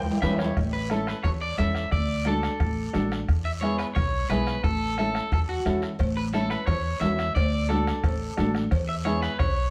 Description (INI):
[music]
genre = latin, cumbia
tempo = 177 BPM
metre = 4/4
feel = straight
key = A major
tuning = A4 = 440 Hz
[part]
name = electric guitar at the edge of break-up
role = melody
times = 0.0-9.7 s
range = F#4 to G5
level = -32 LUFS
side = equal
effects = spring reverb
[part]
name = upright bass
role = bass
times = 0.0-9.7 s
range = A1 to E2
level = -31 LUFS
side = equal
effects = none
[part]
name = timbales and cowbell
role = percussion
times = 0.0-0.5, 6.0-9.6 s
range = none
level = -36 LUFS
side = equal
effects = none
[part]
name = congas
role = percussion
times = 0.1-9.6 s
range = none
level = -34 LUFS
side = equal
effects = none
[part]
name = clear upright piano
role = accompaniment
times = 0.2-9.3 s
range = B3 to B4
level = -34 LUFS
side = equal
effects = none
[part]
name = bombo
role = percussion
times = 0.2-9.6 s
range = none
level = -31 LUFS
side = equal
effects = none
[part]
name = guiro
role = percussion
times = 0.2-9.7 s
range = none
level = -46 LUFS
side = equal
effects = none
[sound]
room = moderate studio reverb, RT60 0.6 s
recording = heard from further back in the room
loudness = -26 LUFS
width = mono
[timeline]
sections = 0.6-9.7 A section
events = drum fill 0.0-0.6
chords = 0.0 A (rootless); 0.6 A; 1.9 D; 3.3 E; 4.6 A; 7.4 D; 8.7 E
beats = 0.23 | 0.57 0.91 1.25 1.59 | 1.93 2.27 2.61 2.95 | 3.29 3.63 3.97 4.30 | 4.64 4.98 5.32 5.66 | 6.00 6.34 6.68 7.02 | 7.36 7.70 8.04 8.38 | 8.72 9.06 9.40